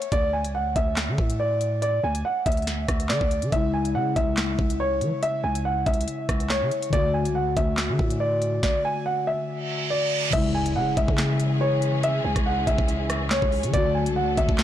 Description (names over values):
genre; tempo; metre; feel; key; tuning
hip hop, drill; 141 BPM; 4/4; half-time; C# phrygian; A4 = 435 Hz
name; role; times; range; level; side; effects
dark grand piano; melody; 0.0-14.6 s; C#5 to G#5; -26 LUFS; right 1 dB; none
drill drum kit; drums; 0.0-14.6 s; crash cymbal, handclaps, hi-hat, kick drum, rim click, snare drum; -26 LUFS; equal; vintage 12-bit sampler grit
growling 808-style bass; bass; 0.1-14.6 s; C#2 to E3; -27 LUFS; equal; none
muted felt-like synth keys; accompaniment; 3.5-14.6 s; C#3 to F#4; -28 LUFS; left 4 dB; chorus
reverse cymbal and impact; sound effects; 9.6-12.0 s; none; -30 LUFS; right 4 dB; none
warm symphonic string section; sustained chords; 10.3-14.6 s; E3 to A4; -33 LUFS; left 1 dB; none
room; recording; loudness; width
digital ambience; blown-out, overdriven recording, overdrive; -21 LUFS; side -11 dB against mid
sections
0.0-10.3 A section; 10.3-14.6 B section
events
reverse cymbal 9.6-10.3; impact 10.3-12.0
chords
0.1 D5; 3.5 C#m; 6.9 D; 10.3 C#m; 13.7 D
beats
| 0.12 0.55 0.97 1.40 | 1.82 2.25 2.67 3.10 | 3.52 3.95 4.38 4.80 | 5.23 5.65 6.08 6.50 | 6.93 7.35 7.78 8.21 | 8.63 9.06 9.48 9.91 | 10.33 10.76 11.18 11.61 | 12.03 12.46 12.88 13.31 | 13.74 14.16 14.59